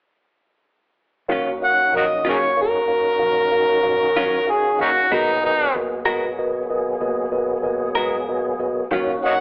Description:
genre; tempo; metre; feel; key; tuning
slow blues; 63 BPM (dotted quarters); 12/8; straight; Eb minor; A4 = 440 Hz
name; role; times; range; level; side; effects
clean electric guitar; accompaniment; 1.3-9.1 s; Eb3 to Bb4; -23 LUFS; equal; tremolo
mellow tine electric piano; accompaniment; 1.3-9.4 s; Gb4 to F5; -24 LUFS; equal; medium stereo tremolo
tonewheel organ; sustained chords; 1.3-9.4 s; Gb3 to Ab4; -27 LUFS; equal; slow rotary speaker, chorus vibrato
vintage muted fingered electric bass; bass; 1.3-9.4 s; Ab1 to Eb3; -41 LUFS; equal; none
overdriven harmonica; melody; 1.6-9.4 s; Db4 to Gb5; -17 LUFS; equal; none
room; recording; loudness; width
moderate large studio reverb, RT60 1.2 s; band playing live in one room, telephone sound; -17 LUFS; side -32 dB against mid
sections
1.3-9.4 A section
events
none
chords
1.3 Ebm9; 5.1 Abm9

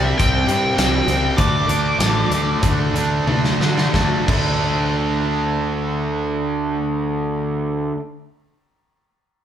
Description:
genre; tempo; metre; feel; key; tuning
hard rock; 88-103 BPM; 4/4; straight; unclear; A4 = 440 Hz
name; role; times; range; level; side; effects
high-gain lead guitar; melody; 0.0-3.2 s; E5 to D6; -22 LUFS; left 1 dB; distortion
cranked stack guitar; riff; 0.0-8.0 s; C3 to D4; -20 LUFS; right 1 dB; overdrive
fuzz fingered electric bass; bass; 0.0-7.9 s; A1 to D3; -23 LUFS; equal; overdrive
big rock drum kit; drums; 0.2-4.5 s; crash cymbal, hi-hat, kick drum, snare drum, toms; -21 LUFS; equal; none
room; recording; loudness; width
moderate large studio reverb, RT60 1.0 s; band playing live in one room; -17 LUFS; side -9 dB against mid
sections
0.0-3.9 A section; 3.9-6.7 B section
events
slowing down 0.0-3.9; drum fill 3.3-3.9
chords
0.0 C5; 1.4 D5

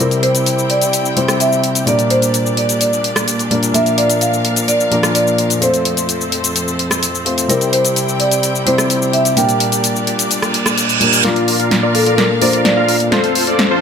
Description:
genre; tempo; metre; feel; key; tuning
EDM, festival progressive house; 128 BPM; 4/4; straight; unclear; A4 = 440 Hz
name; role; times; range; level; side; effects
marimba with medium mallets; melody; 0.0-13.8 s; F4 to G5; -18 LUFS; right 1 dB; tape echo
dark baby grand piano; accompaniment; 0.0-13.8 s; Bb2 to D5; -18 LUFS; left 2 dB; none
clear symphonic string section; sustained chords; 0.0-13.8 s; F2 to G5; -22 LUFS; equal; low-pass filter
house drum kit; drums; 0.0-13.7 s; hi-hat, rim click, shaker, snare drum; -18 LUFS; left 1 dB; none
reverse cymbal and riser; sound effects; 10.5-13.8 s; none; -19 LUFS; right 5 dB; none
dense compressed supersaw; riff; 11.2-13.8 s; F4 to F5; -18 LUFS; right 1 dB; low-pass filter, tape echo
room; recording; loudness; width
light reverb, small room ambience; none; -12 LUFS; side -7 dB against mid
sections
0.0-11.2 A section; 11.2-13.8 B section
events
reverse cymbal 10.5-11.2; build-up 11.2-13.8; drum fill 11.2-13.8; filter sweep on supersaw synth 11.2-13.8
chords
0.0 C; 1.9 Gm/Bb; 3.7 Bb; 5.6 F; 7.5 C; 9.4 Gm/Bb; 11.2 Bb; 13.1 F

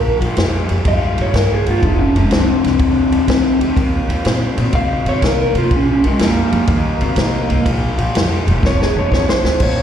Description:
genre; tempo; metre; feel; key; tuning
electric blues shuffle; 123 BPM; 4/4; swing 67% on 8ths; unclear; A4 = 440 Hz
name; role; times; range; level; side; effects
electric guitar through a small old amp; melody; 0.0-9.8 s; Ab3 to F5; -17 LUFS; equal; spring reverb, slapback echo
raw garage guitar; riff; 0.0-9.8 s; F2 to C4; -21 LUFS; left 2 dB; overdrive, spring reverb, slapback echo
upright bass; bass; 0.0-9.8 s; E1 to Db3; -19 LUFS; equal; none
vintage drum kit; drums; 0.2-9.8 s; crash cymbal, kick drum, ride cymbal, snare drum; -19 LUFS; equal; none
room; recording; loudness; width
moderate club ambience, RT60 0.5 s; live gig heard through the venue's PA, recital hall reverb; -13 LUFS; side -9 dB against mid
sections
0.0-9.6 A section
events
clean electric guitar solo 0.0-9.8; drum fill 8.6-9.6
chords
0.0 Bb5; 1.8 F5; 3.8 Eb5; 5.7 Bb5; 6.7 Eb5; 7.7 Bb5; 8.6 F5

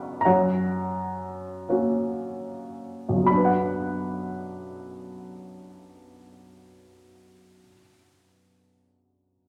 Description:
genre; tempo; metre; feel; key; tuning
classical, lyrical solo piano; 37-46 BPM; 4/4; rubato; B minor; A4 = 440 Hz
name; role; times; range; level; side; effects
dark upright piano; solo; 0.0-9.5 s; B1 to D6; -27 LUFS; equal; none
room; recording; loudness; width
wet scoring stage reverb, RT60 1.6 s; none; -26 LUFS; mono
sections
0.0-3.3 A section; 3.3-9.5 B section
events
slowing down 0.0-3.3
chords
0.2 F#; 3.3 Bm

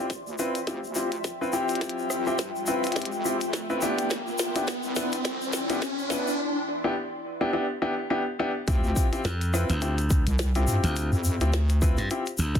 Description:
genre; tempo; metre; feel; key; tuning
glitch hop; 105 BPM; 4/4; swing 57% on 16ths; D dorian; A4 = 440 Hz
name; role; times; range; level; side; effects
warm grand piano; stabs; 0.0-12.2 s; B3 to B4; -29 LUFS; left 1 dB; vintage 12-bit sampler grit, sidechain pumping, low-pass filter, digital delay
riser; sound effects; 1.3-6.4 s; none; -33 LUFS; equal; none
ethereal airy pad; texture; 0.0-6.4 s; E4 to C6; -33 LUFS; left 1 dB; ensemble chorus, built-in reverb, sidechain pumping
electronic kick drum; drums; 0.1-12.6 s; none; -25 LUFS; equal; high-pass filter on kick
glitchy drum kit; drums; 0.1-12.6 s; hi-hat, rim click, snare drum; -32 LUFS; equal; overdrive, high-pass filter on hats, soft clipping on snare, high-pass filter on snare
tube shaker; percussion; 0.1-12.6 s; none; -37 LUFS; left 4 dB; none
wobble bass; bass; 0.3-12.0 s; C2 to G2; -27 LUFS; equal; chorus, tube saturation, high-pass filter
glassy slap bass; bass; 9.2-12.6 s; D2 to G2; -25 LUFS; equal; none
room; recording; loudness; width
moderate studio reverb, RT60 0.6 s; dense, heavily limited modern master; -24 LUFS; side -8 dB against mid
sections
0.0-8.7 A section; 8.7-12.6 B section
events
build-up 0.0-8.7; drum fill 0.0-6.4; riser 1.3-6.4; drop 8.7-12.6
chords
0.0 Dm11; 4.1 Cmaj9; 8.7 Dm11

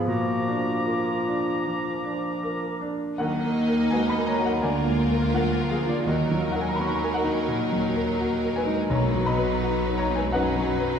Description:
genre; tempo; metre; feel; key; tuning
classical, romantic movement for piano and orchestra; 75-87 BPM; 4/4; rubato; Eb minor; A4 = 440 Hz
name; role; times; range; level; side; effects
clear grand piano; melody; 0.0-11.0 s; B1 to Db6; -24 LUFS; equal; none
flute section; second line; 0.0-2.8 s; D6; -34 LUFS; left 3 dB; none
mellow clarinet; second line; 0.0-2.4 s; F4 to Gb4; -32 LUFS; equal; none
clear bassoon; accompaniment; 0.0-2.8 s; F3; -31 LUFS; left 1 dB; none
bright oboe; second line; 0.1-2.8 s; Bb5; -34 LUFS; right 2 dB; none
warm symphonic violin section; melody; 3.2-11.0 s; Bb4 to Eb5; -35 LUFS; left 2 dB; none
bright symphonic violin section; second line; 3.2-11.0 s; Eb4 to F4; -33 LUFS; left 3 dB; none
clear symphonic viola section; accompaniment; 3.2-11.0 s; Gb3 to Bb3; -32 LUFS; right 1 dB; none
clear symphonic cello section; bass; 3.2-11.0 s; D3 to Db4; -33 LUFS; right 3 dB; none
rich symphonic double bass section; bass; 3.2-11.0 s; B1 to Eb2; -32 LUFS; right 2 dB; none
timpani; percussion; 6.1-7.1 s; Eb3; -32 LUFS; equal; none
room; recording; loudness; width
wet concert hall reverb, RT60 1.8 s; heard from further back in the room; -22 LUFS; side -7 dB against mid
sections
0.0-3.2 A section; 3.2-11.0 B section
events
none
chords
0.1 Bb; 3.2 Ebm; 4.6 Bb7/D; 6.1 Ebm; 8.9 B

